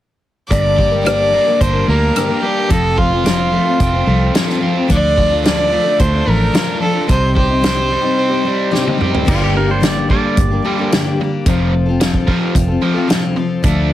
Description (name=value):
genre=folk rock and heartland rock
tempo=110 BPM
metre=4/4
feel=straight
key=G minor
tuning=A4 = 440 Hz
part: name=dark fiddle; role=melody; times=0.5-9.0 s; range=F4 to D5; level=-17 LUFS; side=right 1 dB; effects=none
part: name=picked steel-string acoustic guitar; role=accompaniment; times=0.5-13.9 s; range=G2 to Bb4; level=-19 LUFS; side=left 4 dB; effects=none
part: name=overdriven electric guitar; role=riff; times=0.5-13.9 s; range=F2 to G4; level=-21 LUFS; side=right 2 dB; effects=none
part: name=fingered electric bass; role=bass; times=0.5-13.9 s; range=F1 to D2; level=-17 LUFS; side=right 1 dB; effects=none
part: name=natural country drum kit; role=drums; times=0.5-13.8 s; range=crash cymbal, hi-hat, kick drum, rim click, snare drum, toms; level=-18 LUFS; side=equal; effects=none
part: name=pedal steel guitar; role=second line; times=9.3-11.2 s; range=F4 to D5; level=-22 LUFS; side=right 4 dB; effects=none
room=light reverb, studio ambience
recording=heavily compressed radio sound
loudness=-12 LUFS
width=side -13 dB against mid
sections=0.5-9.3 A section; 9.3-13.9 B section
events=drum fill 8.7-9.3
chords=0.5 Gm; 2.7 F; 4.9 Dm; 7.1 Cm; 9.3 Gm; 11.5 F